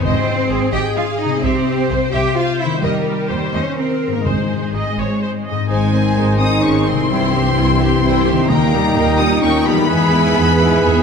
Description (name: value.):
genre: cinematic.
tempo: 129 BPM.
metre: 3/4.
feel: straight.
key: Ab major.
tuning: A4 = 440 Hz.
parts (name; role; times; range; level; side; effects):
warm symphonic violin section; melody; 0.0-11.0 s; Eb4 to Eb6; -23 LUFS; left 4 dB; none.
warm symphonic violin section; second line; 0.0-11.0 s; G4 to Bb5; -26 LUFS; left 3 dB; none.
clear symphonic viola section; accompaniment; 0.0-11.0 s; G3 to Eb5; -22 LUFS; right 1 dB; none.
concert harp; arpeggios; 0.0-11.0 s; Ab2 to E5; -22 LUFS; left 9 dB; none.
rich studio cello section; bass; 0.0-11.0 s; G3 to G4; -21 LUFS; right 3 dB; none.
rich symphonic double bass section; bass; 0.0-11.0 s; Ab1 to E2; -21 LUFS; right 3 dB; none.
timpani; percussion; 0.0-0.7, 4.3-4.9, 8.5-9.2 s; Ab2 to Eb3; -24 LUFS; left 3 dB; none.
concert flute; second line; 5.7-11.0 s; G5 to G#5; -26 LUFS; equal; none.
mellow clarinet; second line; 5.7-11.0 s; Eb4 to G#4; -23 LUFS; left 2 dB; none.
warm oboe; second line; 5.7-11.0 s; B4 to Eb5; -27 LUFS; right 1 dB; none.
mellow French horn section; sustained chords; 5.7-11.0 s; Eb3 to Eb4; -24 LUFS; left 4 dB; none.
warm trombone section; sustained chords; 5.7-11.0 s; G2 to E3; -23 LUFS; right 3 dB; none.
room: moderate scoring stage reverb, RT60 1.9 s.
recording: none.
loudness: -14 LUFS.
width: side -6 dB against mid.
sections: 0.0-5.7 A section; 5.7-11.0 A section.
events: none.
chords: 0.0 Ab; 1.4 C; 2.8 Eb; 4.3 Ab; 7.1 C; 8.5 Eb; 9.9 E.